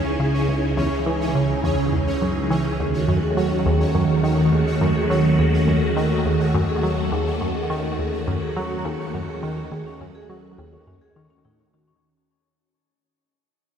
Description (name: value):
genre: ambient, sequencer-driven space music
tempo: 104 BPM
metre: 4/4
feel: straight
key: unclear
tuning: A4 = 440 Hz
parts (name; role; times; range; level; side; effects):
- phased string machine; sustained chords; 0.0-12.0 s; C#2 to G#4; -21 LUFS; right 1 dB; ensemble chorus, phaser, shimmer reverb
- vibraphone with soft mallets; arpeggios; 0.0-11.9 s; G#3 to G#4; -30 LUFS; moving between left 5 dB and right 2 dB; auto-pan, tape echo, shimmer reverb
- tight sequenced synth; riff; 0.0-11.9 s; C#2 to F#3; -24 LUFS; equal; chorus, tape echo, shimmer reverb
- pulsing gated texture; texture; 0.0-12.0 s; C#4 to C#5; -30 LUFS; right 2 dB; chorus, built-in reverb, shimmer reverb
room: wet spring reverb, RT60 2.4 s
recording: echo-heavy mix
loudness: -19 LUFS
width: side -8 dB against mid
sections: 0.0-12.0 A section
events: fade-in on vibraphone 0.0-12.0; fade-out 5.9-12.0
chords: 0.0 C#madd9; 2.8 D#dim